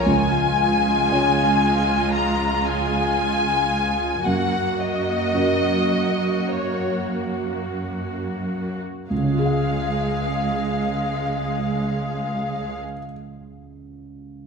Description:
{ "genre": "cinematic, emotional film score for orchestra", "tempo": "43-59 BPM", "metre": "4/4", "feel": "rubato", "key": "Db major", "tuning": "A4 = 442 Hz", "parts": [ { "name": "warm symphonic violin section", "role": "melody", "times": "0.0-12.8 s", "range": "Db5 to Bb5", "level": "-23 LUFS", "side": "left 4 dB", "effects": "none" }, { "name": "clear symphonic viola section", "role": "accompaniment", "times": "0.0-12.8 s", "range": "Ab3 to Ab4", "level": "-27 LUFS", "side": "right 2 dB", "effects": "none" }, { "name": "felt-muted upright piano", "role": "accompaniment", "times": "0.0-14.5 s", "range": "Db2 to F5", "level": "-26 LUFS", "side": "right 2 dB", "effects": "none" }, { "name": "concert harp", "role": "arpeggios", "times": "0.0-3.7 s", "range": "F3 to F5", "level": "-34 LUFS", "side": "left 9 dB", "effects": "none" }, { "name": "rich symphonic cello section", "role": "bass", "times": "0.1-12.8 s", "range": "Db2 to Gb2", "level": "-27 LUFS", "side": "right 2 dB", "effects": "none" } ], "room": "wet scoring stage reverb, RT60 1.8 s", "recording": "minimal, uncompressed stereo recording", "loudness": "-20 LUFS", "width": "side -5 dB against mid", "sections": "0.1-9.1 A section; 9.1-14.4 B section", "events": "slowing down 0.0-9.1", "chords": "0.1 Db; 4.2 Gb; 9.1 Db", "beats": "| 0.07 1.12 2.14 3.18 | 4.25 5.34 6.49 7.74 | 9.10 10.43 11.76 13.10" }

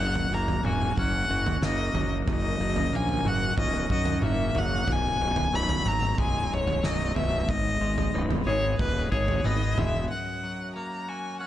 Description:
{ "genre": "post-rock", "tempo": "92 BPM", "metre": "4/4", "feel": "straight", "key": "unclear", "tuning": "A4 = 441 Hz", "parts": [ { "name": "rich violin", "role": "melody", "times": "0.0-11.5 s", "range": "B4 to B5", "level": "-29 LUFS", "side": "left 1 dB", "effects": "tape echo" }, { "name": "deep dark ambient pad", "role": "sustained chords", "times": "1.4-10.1 s", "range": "D#3 to A#5", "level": "-39 LUFS", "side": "right 1 dB", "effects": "none" }, { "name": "twangy electric guitar", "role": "arpeggios", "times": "0.0-11.5 s", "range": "B1 to G#4", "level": "-34 LUFS", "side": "left 2 dB", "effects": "spring reverb, tape echo" }, { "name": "fuzz fingered electric bass", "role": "bass", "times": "0.0-10.1 s", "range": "B0 to F#2", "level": "-29 LUFS", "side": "equal", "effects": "overdrive" }, { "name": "loose indie drum kit", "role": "drums", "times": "0.2-9.9 s", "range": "kick drum, snare drum, toms", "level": "-29 LUFS", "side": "right 1 dB", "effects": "none" } ], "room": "small room ambience", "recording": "nothing above 10.4 kHz", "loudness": "-24 LUFS", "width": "side -12 dB against mid", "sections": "0.0-10.1 A section; 10.1-11.5 A section", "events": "none", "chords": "0.0 F#6; 4.9 B6; 7.5 G#madd9; 10.1 F#", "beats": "0.33 0.98 1.63 | 2.28 2.93 3.59 4.24 | 4.89 5.54 6.19 6.84 | 7.49 8.14 8.80 9.45 | 10.10 10.76 11.41" }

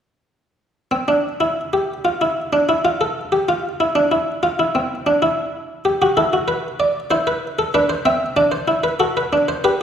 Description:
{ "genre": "classical, baroque-style 3-part fugue for harpsichord", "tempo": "95 BPM", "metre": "4/4", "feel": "straight", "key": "unclear", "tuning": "A4 = 439 Hz", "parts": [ { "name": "buff-stop harpsichord", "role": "solo", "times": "0.9-9.8 s", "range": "C4 to E5", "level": "-16 LUFS", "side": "equal", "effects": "none" } ], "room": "wet recital hall reverb, RT60 1.6 s", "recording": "heard from further back in the room", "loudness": "-16 LUFS", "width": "side -8 dB against mid", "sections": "0.8-9.8 A section", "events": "none", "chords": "0.8 N.C.; 5.9 G; 7.1 C/E; 8.4 D7", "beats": "| 0.76 1.40 2.04 2.68 | 3.32 3.96 4.59 5.22 | 5.85 6.48 7.11 7.74 | 8.38 9.01 9.65" }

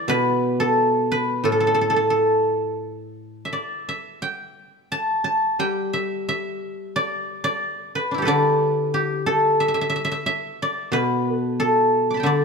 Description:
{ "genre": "chinese traditional, Chinese solo plucked strings", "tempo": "89 BPM", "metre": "4/4", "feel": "rubato", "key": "A shang mode", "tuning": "A4 = 440 Hz", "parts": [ { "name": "guzheng", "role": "solo", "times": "0.0-12.4 s", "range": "A2 to D6", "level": "-20 LUFS", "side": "equal", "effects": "none" } ], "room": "light reverb", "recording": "close, detailed microphones", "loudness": "-19 LUFS", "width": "side -5 dB against mid", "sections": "0.0-12.4 A section", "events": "none", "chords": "none", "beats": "0.10 0.79 | 1.47 2.15 2.84 3.54 | 4.24 4.93 5.62 6.29 | 6.95 7.62 8.27 8.93 | 9.60 10.27 10.94 11.60 | 12.27" }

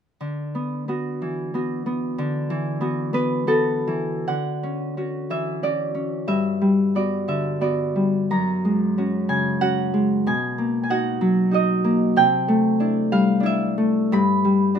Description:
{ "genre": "classical, solo harp piece", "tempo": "70-99 BPM", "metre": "3/4", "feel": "rubato", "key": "unclear", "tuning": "A4 = 440 Hz", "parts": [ { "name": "Celtic harp", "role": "solo", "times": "0.2-14.8 s", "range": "F#2 to B5", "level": "-19 LUFS", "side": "equal", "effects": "none" } ], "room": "light reverb", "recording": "minimal, uncompressed stereo recording", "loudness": "-20 LUFS", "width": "side -8 dB against mid", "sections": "0.2-4.3 A section; 4.3-14.8 B section", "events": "none", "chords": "0.2 D69; 4.3 Dmaj9; 6.3 Gmaj7; 8.3 F#add9; 10.3 Bmaj7; 12.2 C69; 14.1 G", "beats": "| 0.21 0.89 1.54 | 2.18 2.81 3.48 | 4.28 4.98 5.63 | 6.29 6.95 7.62 | 8.32 8.98 9.61 | 10.26 10.89 11.52 | 12.16 12.80 13.44 | 14.13 14.76" }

